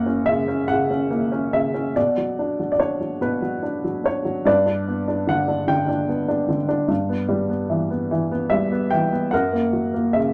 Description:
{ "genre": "classical, lyrical solo piano", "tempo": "49 BPM (dotted quarters)", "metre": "6/8", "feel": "rubato", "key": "B harmonic minor", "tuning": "A4 = 440 Hz", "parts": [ { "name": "warm upright piano", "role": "solo", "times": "0.0-10.3 s", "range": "F#2 to G5", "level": "-22 LUFS", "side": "equal", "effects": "none" } ], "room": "wet small room reverb, RT60 0.5 s", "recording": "none", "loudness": "-22 LUFS", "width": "mono", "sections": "0.0-2.0 A section; 2.0-10.3 A section", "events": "none", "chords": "0.0 F#; 2.0 Bm; 4.5 G; 6.9 Em/G; 9.3 F#", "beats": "0.69 | 1.96 3.21 | 4.46 5.69 | 6.90 8.11 | 9.33" }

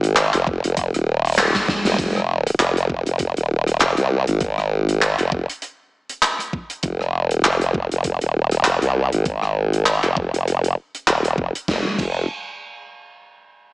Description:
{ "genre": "glitch hop", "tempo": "99 BPM", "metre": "4/4", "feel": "swing 56% on 16ths", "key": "F minor", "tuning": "A4 = 440 Hz", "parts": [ { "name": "formant-sweep wobble bass", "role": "bass", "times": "0.0-12.3 s", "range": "Eb1 to C2", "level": "-19 LUFS", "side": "equal", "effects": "chorus, overdrive" }, { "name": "gated 80s drum kit", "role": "drums", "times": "0.0-12.1 s", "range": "crash cymbal, handclaps, hi-hat, rim click, snare drum", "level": "-21 LUFS", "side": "equal", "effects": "none" }, { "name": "electronic kick drum", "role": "drums", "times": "0.5-12.1 s", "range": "none", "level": "-27 LUFS", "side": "equal", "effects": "none" } ], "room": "moderate echo chamber reverb, RT60 1.3 s", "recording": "small speaker sound", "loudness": "-18 LUFS", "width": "side -24 dB against mid", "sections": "0.0-2.0 A section; 2.0-11.7 B section; 11.7-13.7 C section", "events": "drop 0.0-2.0; drum fill 1.4-2.0; band accent 1.8-2.1", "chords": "none", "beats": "0.17 0.77 1.38 | 1.98 2.59 3.20 3.80 | 4.41 5.01 5.62 6.23 | 6.83 7.44 8.04 8.65 | 9.26 9.86 10.47 11.07 | 11.68" }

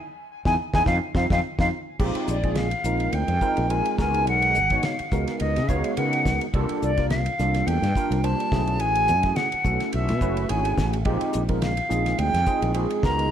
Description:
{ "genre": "electric jazz fusion", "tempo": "106 BPM", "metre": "4/4", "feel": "swing 55% on 16ths", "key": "unclear", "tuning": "A4 = 442 Hz", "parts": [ { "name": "silver concert flute", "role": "melody", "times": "0.5-13.3 s", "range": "D5 to Bb5", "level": "-25 LUFS", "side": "equal", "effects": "none" }, { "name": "overdriven tine electric piano", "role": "accompaniment", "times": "0.5-13.3 s", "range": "G3 to Db5", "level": "-27 LUFS", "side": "right 2 dB", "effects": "analog chorus" }, { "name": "fretless electric bass", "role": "bass", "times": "0.5-13.3 s", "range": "F#1 to Db3", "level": "-26 LUFS", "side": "equal", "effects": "none" }, { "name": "damped 70s drum kit", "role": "drums", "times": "0.5-13.3 s", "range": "crash cymbal, hi-hat, kick drum, ride cymbal, snare drum", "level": "-29 LUFS", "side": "equal", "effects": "none" } ], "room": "light reverb", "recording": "none", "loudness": "-21 LUFS", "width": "side -9 dB against mid", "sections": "0.0-2.0 A section; 2.0-13.3 B section", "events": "band accent 0.0-2.0; drum fill 0.9-2.0", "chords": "0.0 Emaj7; 0.9 F5; 2.0 Bb13sus4; 4.0 Db13sus4; 6.5 C13sus4; 8.5 B13sus4; 11.1 Bb13sus4", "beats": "0.30 0.87 1.43 | 2.00 2.57 3.13 3.70 | 4.27 4.83 5.40 5.97 | 6.54 7.10 7.67 8.23 | 8.80 9.36 9.93 10.49 | 11.06 11.62 12.19 12.75" }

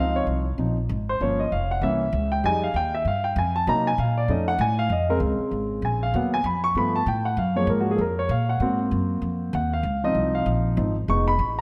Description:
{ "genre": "jazz, big band swing", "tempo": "194 BPM", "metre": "4/4", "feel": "swing 60% on 8ths", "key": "F minor, Bb minor from 4.9 s", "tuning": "A4 = 440 Hz", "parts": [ { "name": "warm concert grand piano", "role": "accompaniment", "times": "0.0-11.6 s", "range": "Db3 to Db6", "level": "-26 LUFS", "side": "equal", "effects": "none" }, { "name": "upright bass", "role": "bass", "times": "0.0-11.6 s", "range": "F1 to C3", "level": "-28 LUFS", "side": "equal", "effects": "none" } ], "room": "moderate concert hall reverb, RT60 1.7 s", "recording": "none", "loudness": "-24 LUFS", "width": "mono", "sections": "0.0-4.9 A section; 4.9-11.6 A section", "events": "grand piano solo 0.0-11.6", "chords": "0.0 Dbmaj9; 1.2 Gm7b5; 1.8 C7b9; 2.4 Fm9; 3.7 Cm7b5; 4.3 Faug7; 4.9 Bbm9; 6.1 Ebm11; 6.8 G9; 7.4 Gbmaj7; 8.6 Ab9; 9.8 Dbmaj7; 11.1 Fm7b5", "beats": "0.28 0.59 0.90 | 1.21 1.51 1.82 2.13 | 2.44 2.75 3.06 3.37 | 3.67 3.98 4.29 4.60 | 4.91 5.22 5.53 5.83 | 6.14 6.45 6.76 7.07 | 7.38 7.69 8.00 8.30 | 8.61 8.92 9.23 9.54 | 9.85 10.16 10.47 10.78 | 11.08 11.39" }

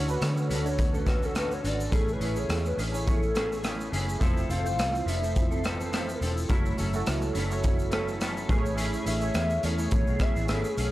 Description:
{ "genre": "indie pop, bedroom pop", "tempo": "105 BPM", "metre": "4/4", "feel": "swing 55% on 16ths", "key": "A major", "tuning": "A4 = 440 Hz", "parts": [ { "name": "hollow clarinet-like synth lead", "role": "melody", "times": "0.0-10.9 s", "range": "G#4 to F5", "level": "-33 LUFS", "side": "left 2 dB", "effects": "wide subtle chorus" }, { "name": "mellow electric guitar", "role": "second line", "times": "0.0-10.6 s", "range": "B3 to C#5", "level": "-40 LUFS", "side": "right 3 dB", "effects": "ensemble chorus, tape echo" }, { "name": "clean electric guitar", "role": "accompaniment", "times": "0.0-10.9 s", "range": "D3 to A4", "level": "-35 LUFS", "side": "left 2 dB", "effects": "analog chorus, warbly pitch drift" }, { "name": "warm analog keys", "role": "accompaniment", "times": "0.0-10.9 s", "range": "A3 to G#5", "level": "-34 LUFS", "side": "right 3 dB", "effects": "chorus, phaser" }, { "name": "vintage muted fingered electric bass", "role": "bass", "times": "0.0-10.9 s", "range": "E1 to D3", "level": "-31 LUFS", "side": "equal", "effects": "none" }, { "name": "raw garage drum kit", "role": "drums", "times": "0.1-10.9 s", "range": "hi-hat, kick drum, rim click, shaker", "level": "-29 LUFS", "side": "equal", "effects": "none" } ], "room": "small room ambience", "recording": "none", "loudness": "-25 LUFS", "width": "side -16 dB against mid", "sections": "0.0-10.9 A section", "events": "soft synth lead solo 0.0-10.9", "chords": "0.0 Dmaj7; 1.9 Amaj7; 4.2 Fmaj7; 6.5 F#m7; 8.5 Amaj7", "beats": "0.21 0.79 1.36 | 1.93 2.50 3.07 3.64 | 4.22 4.79 5.36 5.93 | 6.50 7.07 7.64 8.21 | 8.78 9.35 9.93 10.49" }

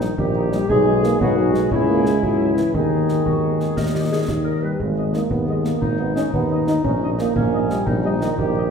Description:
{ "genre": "military-style march for wind band", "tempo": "117 BPM (dotted quarters)", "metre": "6/8", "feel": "straight", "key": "G# minor", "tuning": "A4 = 440 Hz", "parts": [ { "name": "dark trumpet section", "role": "melody", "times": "0.0-8.6 s", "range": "D#4 to D#5", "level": "-30 LUFS", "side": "left 4 dB", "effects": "none" }, { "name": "dark woodwind section", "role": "second line", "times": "0.0-8.7 s", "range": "B3 to B4", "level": "-26 LUFS", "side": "left 3 dB", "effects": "none" }, { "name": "warm euphonium", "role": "second line", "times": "0.0-8.7 s", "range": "D#3 to D#4", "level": "-23 LUFS", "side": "right 3 dB", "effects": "none" }, { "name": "dark French horn section", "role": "accompaniment", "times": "0.0-8.6 s", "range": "G3 to E4", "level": "-28 LUFS", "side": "left 6 dB", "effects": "none" }, { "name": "clear tuba", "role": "bass", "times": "0.0-8.7 s", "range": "G#1 to D#2", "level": "-22 LUFS", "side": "equal", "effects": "none" }, { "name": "concert snare drum and concert bass drum", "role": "drums", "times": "0.0-8.5 s", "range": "none", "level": "-27 LUFS", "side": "left 1 dB", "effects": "none" } ], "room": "wet recital hall reverb, RT60 1.5 s", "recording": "recorded in a church or concert hall", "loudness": "-17 LUFS", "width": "side -6 dB against mid", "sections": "0.0-8.7 A section", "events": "none", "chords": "0.0 D#/A#; 0.7 G#m/B; 1.7 C#m; 2.7 G#m/D#; 3.8 D#; 4.8 G#m; 6.8 D#7/A#", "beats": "0.18 | 0.69 1.21 | 1.72 2.23 | 2.74 3.26 | 3.77 4.28 | 4.79 5.31 | 5.82 6.33 | 6.85 7.36 | 7.87 8.38" }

